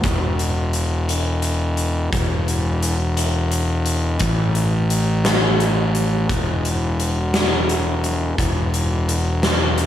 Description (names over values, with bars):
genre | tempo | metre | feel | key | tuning
post-rock | 58 BPM (dotted quarters) | 6/8 | straight | unclear | A4 = 440 Hz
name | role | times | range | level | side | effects
fuzz fingered electric bass | bass | 0.0-9.9 s | E1 to A1 | -19 LUFS | left 1 dB | overdrive
huge arena drum kit | drums | 0.0-9.9 s | hi-hat, kick drum, snare drum | -22 LUFS | equal | none
room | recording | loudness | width
light reverb | studio ambience | -17 LUFS | side -11 dB against mid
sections
0.0-9.9 A section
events
none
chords
none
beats
| 0.04 1.08 | 2.12 3.17 | 4.21 5.25 | 6.29 7.34 | 8.38 9.43